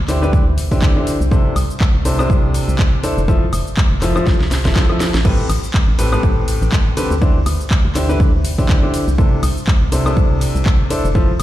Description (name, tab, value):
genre	piano house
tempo	122 BPM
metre	4/4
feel	swing 56% on 16ths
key	C major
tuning	A4 = 440 Hz
part	organ-like FM bass	bass	0.0-11.4 s	F1 to D2	-18 LUFS	equal	sidechain pumping
part	clear upright piano	riff	0.1-11.3 s	A2 to C5	-19 LUFS	left 1 dB	sidechain pumping, ping-pong delay
part	house drum kit	drums	0.1-11.4 s	crash cymbal, handclaps, hi-hat, ride cymbal, shaker, snare drum, woodblock	-24 LUFS	left 1 dB	overdrive
part	electronic kick drum	drums	0.3-11.3 s	none	-14 LUFS	equal	overdrive
room	little or no reverb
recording	played on a big sound system in a bare room, large studio reverb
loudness	-13 LUFS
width	side -14 dB against mid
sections	0.0-11.4 A section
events	drum fill 4.3-5.2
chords	0.0 D9sus4; 1.3 C69; 3.3 Fmaj7; 5.2 Am9; 7.2 D9sus4; 9.2 C69